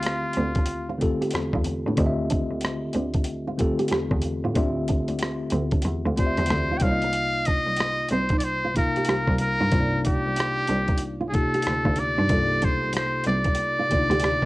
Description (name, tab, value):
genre	R&B, neo-soul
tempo	93 BPM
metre	4/4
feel	swing 63% on 16ths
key	D phrygian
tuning	A4 = 437 Hz
part	trumpet with metal mute	melody	0.0-1.0, 6.2-14.5 s	F4 to G5	-25 LUFS	equal	none
part	nylon-string guitar	second line	0.0-14.4 s	C4 to G4	-30 LUFS	right 3 dB	none
part	mellow tine electric piano	accompaniment	0.0-14.5 s	C3 to F5	-28 LUFS	left 1 dB	medium stereo tremolo
part	boom bap sampler-style drum kit	drums	0.0-14.5 s	hi-hat, kick drum, rim click	-26 LUFS	equal	none
part	rich cello	bass	0.4-14.5 s	C2 to A2	-28 LUFS	equal	none
room	studio reverb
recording	worn, warbling old tape, cassette tape, warbly pitch drift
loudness	-21 LUFS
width	side -19 dB against mid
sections	0.0-14.5 A section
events	none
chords	0.0 Dm11; 6.8 Cm11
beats	0.04 0.68 1.33 | 1.97 2.62 3.26 3.91 | 4.55 5.20 5.84 6.49 | 7.13 7.78 8.42 9.07 | 9.71 10.36 11.00 11.65 | 12.29 12.94 13.59 14.23